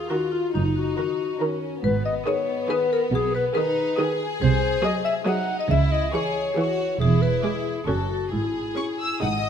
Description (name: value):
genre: cinematic, playful, whimsical film cue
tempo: 139 BPM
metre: 3/4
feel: straight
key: C# minor from 4.4 s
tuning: A4 = 441 Hz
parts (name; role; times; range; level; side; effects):
- marimba with medium hard mallets; melody; 0.0-9.5 s; Eb4 to F#5; -30 LUFS; left 7 dB; none
- dark studio violin section; second line; 0.0-9.5 s; Cb4 to F#5; -30 LUFS; left 3 dB; none
- mellow clarinet; second line; 0.0-9.2 s; Eb4 to F#5; -27 LUFS; left 2 dB; none
- dark studio violin section; melody; 0.1-9.5 s; Bb5 to E6; -33 LUFS; left 2 dB; none
- rich studio viola section; accompaniment; 0.1-9.5 s; Eb3 to Bb4; -29 LUFS; right 2 dB; none
- warm studio cello section; bass; 0.5-9.5 s; E2 to C#3; -27 LUFS; right 3 dB; none
- warm studio double bass section; bass; 0.5-9.5 s; E1 to C#2; -25 LUFS; right 4 dB; none
room: moderate scoring stage reverb, RT60 2.0 s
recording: none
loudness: -21 LUFS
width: side -8 dB against mid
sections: 0.0-9.5 A section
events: none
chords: 0.0 Ebm; 0.5 Ebm/Gb; 1.8 Abm; 3.1 Abm/Cb; 4.4 G#7/B#; 5.7 C#m; 7.0 E7; 7.9 F#m; 8.3 C#m/G#